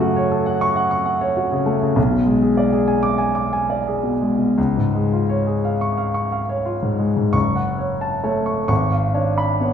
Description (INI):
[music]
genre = classical, romantic character piece for solo piano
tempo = 80-101 BPM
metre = 4/4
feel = rubato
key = F# minor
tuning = A4 = 438 Hz
[part]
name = warm grand piano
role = solo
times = 0.0-9.7 s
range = F#1 to D6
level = -17 LUFS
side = equal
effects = none
[sound]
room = wet recital hall reverb, RT60 1.4 s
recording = recorded in a church or concert hall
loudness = -17 LUFS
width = side -8 dB against mid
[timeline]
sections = 0.0-7.3 A section; 7.3-9.7 B section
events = none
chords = 0.0 F#m; 2.0 G#dim/B; 4.6 C#; 7.3 F#m; 8.7 C#7/G#